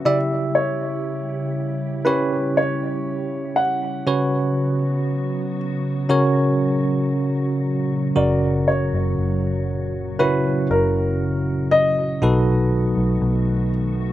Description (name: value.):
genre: pop.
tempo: 59 BPM.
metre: 4/4.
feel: straight.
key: unclear.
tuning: A4 = 440 Hz.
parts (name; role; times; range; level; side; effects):
bell-like tine electric piano; accompaniment; 0.0-14.1 s; B2 to E5; -21 LUFS; right 1 dB; medium stereo tremolo.
glassy FM pad; sustained chords; 0.0-14.1 s; A#2 to G4; -29 LUFS; left 1 dB; ensemble chorus, built-in reverb.
dark baby grand piano; melody; 0.1-13.7 s; A#4 to F#5; -23 LUFS; left 1 dB; slapback echo.
vintage muted fingered electric bass; bass; 8.2-14.1 s; F#1 to B1; -24 LUFS; left 1 dB; none.
room: light reverb.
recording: recorded outdoors, with no room sound.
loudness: -18 LUFS.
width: side -13 dB against mid.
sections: 0.0-14.1 A section.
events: none.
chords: 0.1 C#dim; 4.1 F#sus4; 6.1 F#; 12.2 B7.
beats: | 0.06 1.05 2.06 3.07 | 4.07 5.08 6.11 7.13 | 8.16 9.18 10.19 11.21 | 12.22 13.22.